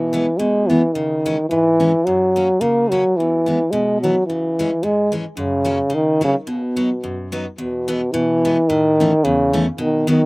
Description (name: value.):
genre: alpine folk, alpine dance band.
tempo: 108 BPM.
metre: 2/4.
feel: swing 54% on 8ths.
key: B major.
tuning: A4 = 441 Hz.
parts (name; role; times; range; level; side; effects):
warm euphonium; melody; 0.0-10.3 s; B2 to A#3; -16 LUFS; equal; none.
picked steel-string acoustic guitar; accompaniment; 0.0-10.2 s; E2 to D#4; -22 LUFS; equal; none.
room: light reverb.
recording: recorded outdoors, with no room sound.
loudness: -16 LUFS.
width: side -26 dB against mid.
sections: 0.0-7.6 A section; 7.6-10.3 B section.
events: none.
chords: 0.0 E/B; 0.9 C#m; 2.0 F#; 3.2 E; 4.3 C#m; 5.4 F#; 6.5 B; 7.6 E; 8.7 A.